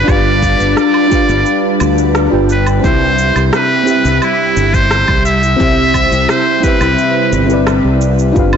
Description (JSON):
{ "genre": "sunset chillout", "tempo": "87 BPM", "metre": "4/4", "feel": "straight", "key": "C major", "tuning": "A4 = 440 Hz", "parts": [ { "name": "trumpet with metal mute", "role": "melody", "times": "0.0-7.7 s", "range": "E4 to E5", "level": "-15 LUFS", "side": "equal", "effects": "ping-pong delay" }, { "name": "mellow FM electric piano", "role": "accompaniment", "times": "0.0-8.6 s", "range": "C4 to G5", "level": "-15 LUFS", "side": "moving between left 3 dB and right 4 dB", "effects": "chorus, auto-pan, tape echo" }, { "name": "ethereal airy pad", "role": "sustained chords", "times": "0.0-8.6 s", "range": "C3 to B4", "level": "-18 LUFS", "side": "left 1 dB", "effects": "ensemble chorus, built-in reverb, vintage 12-bit sampler grit" }, { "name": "fretless electric bass", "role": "bass", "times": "0.0-8.6 s", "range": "G1 to D2", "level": "-15 LUFS", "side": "equal", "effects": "ensemble chorus" }, { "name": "electronic kick drum", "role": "drums", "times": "0.1-8.5 s", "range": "none", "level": "-16 LUFS", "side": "equal", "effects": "small room ambience" }, { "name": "electronic woodblock, cabasa and rim click", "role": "drums", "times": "0.1-8.6 s", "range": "none", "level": "-22 LUFS", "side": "right 2 dB", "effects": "small room ambience, soft clipping on snare" } ], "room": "moderate lush hall reverb, RT60 2.3 s", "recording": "blown-out, overdriven recording, overdrive, nothing above 7.9 kHz", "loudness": "-9 LUFS", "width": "side -7 dB against mid", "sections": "0.0-8.6 A section", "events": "none", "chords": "0.0 G7; 2.8 Cmaj7" }